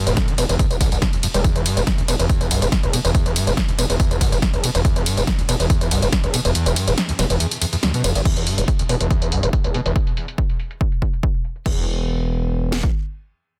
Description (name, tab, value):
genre	driving peak-time techno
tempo	141 BPM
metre	4/4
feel	straight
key	E minor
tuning	A4 = 440 Hz
part	screaming distorted acid line	riff	0.0-11.9 s	D2 to G3	-26 LUFS	equal	distortion, analog chorus, sidechain pumping, digital delay
part	gritty driven synth bass	bass	0.1-12.9 s	E1 to B1	-23 LUFS	equal	distortion, sidechain pumping
part	punchy analog drum machine	drums	0.1-11.7 s	crash cymbal, hi-hat, ride cymbal, snare drum, tambourine	-26 LUFS	equal	sidechain pumping on hats, low-pass filter on hats, sidechain pumping on cymbals, low-pass filter on cymbals, sidechain pumping on perc, low-pass filter on perc, low-pass filter on snare, low-pass filter on room
part	techno drum kit	drums	0.2-12.9 s	kick drum, snare drum	-22 LUFS	equal	none
room	little or no reverb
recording	dense, heavily limited modern master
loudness	-20 LUFS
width	mono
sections	0.0-8.3 A section; 8.3-11.7 B section; 11.7-13.6 C section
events	drop 0.0-8.3; kick drops out 6.6-8.3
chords	0.0 E5; 11.7 N.C.